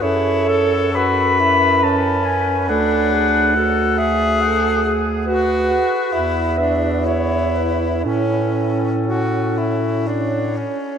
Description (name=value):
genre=classical, lyrical piece for single-reed quartet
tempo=59-71 BPM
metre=3/4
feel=rubato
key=A major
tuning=A4 = 442 Hz
part: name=mellow clarinet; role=melody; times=0.0-11.0 s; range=A4 to B5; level=-20 LUFS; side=left 4 dB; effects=none
part: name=warm alto saxophone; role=second line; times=0.0-10.7 s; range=C#4 to B4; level=-22 LUFS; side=right 4 dB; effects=none
part: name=bright tenor saxophone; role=accompaniment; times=0.0-11.0 s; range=C#4 to A4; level=-22 LUFS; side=left 1 dB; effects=none
part: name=warm bass clarinet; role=bass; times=0.0-10.7 s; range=D2 to A2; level=-21 LUFS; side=right 2 dB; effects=none
room=wet cathedral reverb, RT60 5.5 s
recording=in a vast, echoing space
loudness=-15 LUFS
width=side -8 dB against mid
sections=0.0-11.0 A section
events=none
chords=0.0 F#m; 2.7 D; 5.3 Bm/D; 6.1 E5; 8.0 A